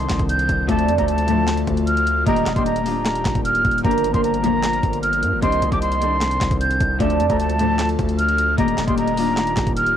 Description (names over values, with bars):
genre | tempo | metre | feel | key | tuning
hip hop, trap | 152 BPM | 4/4 | half-time | unclear | A4 = 441 Hz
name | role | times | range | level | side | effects
breathy jazz flute | melody | 0.0-10.0 s | A5 to G6 | -22 LUFS | equal | low-pass filter
Celtic harp | accompaniment | 0.0-10.0 s | Eb3 to Bb4 | -23 LUFS | left 5 dB | low-pass filter, cassette tape
airy breathy pad | sustained chords | 0.0-10.0 s | C3 to Bb4 | -30 LUFS | right 1 dB | chorus, cassette tape
hard-hitting 808-style bass | bass | 0.0-10.0 s | D1 to G2 | -24 LUFS | equal | none
trap drum kit | drums | 0.0-10.0 s | handclaps, hi-hat, kick drum, snare drum | -25 LUFS | equal | cassette tape
warm velvety synth lead | second line | 0.7-9.3 s | Bb4 to Eb5 | -26 LUFS | right 12 dB | chorus, cassette tape, analog delay
dark studio string section | stabs | 1.3-1.4, 4.4-4.6, 7.6-7.8 s | D2 to F3 | -29 LUFS | right 8 dB | cassette tape, analog delay
room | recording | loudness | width
light reverb | home recording on cassette | -17 LUFS | side -9 dB against mid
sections
0.0-10.0 A section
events
none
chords
0.0 Cmadd9; 0.7 Dm; 2.3 Ebmaj7; 3.8 Gm7; 5.4 Cmadd9; 7.0 Dm; 8.6 Ebmaj7